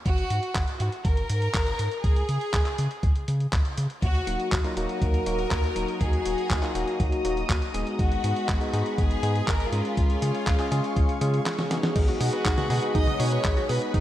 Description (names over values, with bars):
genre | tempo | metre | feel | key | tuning
italo disco | 121 BPM | 4/4 | straight | Eb minor | A4 = 440 Hz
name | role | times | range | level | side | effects
rich chamber violin section | melody | 0.1-14.0 s | F4 to D#6 | -31 LUFS | equal | tape echo
round analog bass | bass | 0.1-14.0 s | Eb1 to Db3 | -28 LUFS | equal | none
dusty soul sampler-style drum kit | drums | 0.1-14.0 s | crash cymbal, handclaps, hi-hat, snare drum, toms | -33 LUFS | equal | none
electronic kick drum | drums | 0.1-14.0 s | none | -25 LUFS | equal | none
string machine, full ensemble | sustained chords | 4.0-14.0 s | Gb4 to Eb6 | -32 LUFS | left 1 dB | ensemble chorus
bell-like tine electric piano | stabs | 4.3-14.0 s | Gb3 to Ab4 | -31 LUFS | left 1 dB | tape echo
analog pluck | arpeggios | 12.0-14.0 s | D#4 to B4 | -33 LUFS | right 2 dB | chorus, tape echo
room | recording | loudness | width
moderate lush hall reverb, RT60 2.0 s | dreamy mix soaked in reverb | -23 LUFS | side -13 dB against mid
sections
0.0-12.0 A section; 12.0-14.0 B section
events
break 11.5-12.0; drum fill 11.5-12.0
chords
0.1 Gbadd9/Ab; 2.0 Db5; 4.0 Ebm; 8.0 Abm; 10.0 Db; 12.0 B6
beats
| 0.06 0.55 1.05 1.54 | 2.04 2.54 3.03 3.53 | 4.02 4.52 5.02 5.51 | 6.01 6.50 7.00 7.50 | 7.99 8.49 8.98 9.48 | 9.97 10.47 10.97 11.46 | 11.96 12.45 12.95 13.45 | 13.94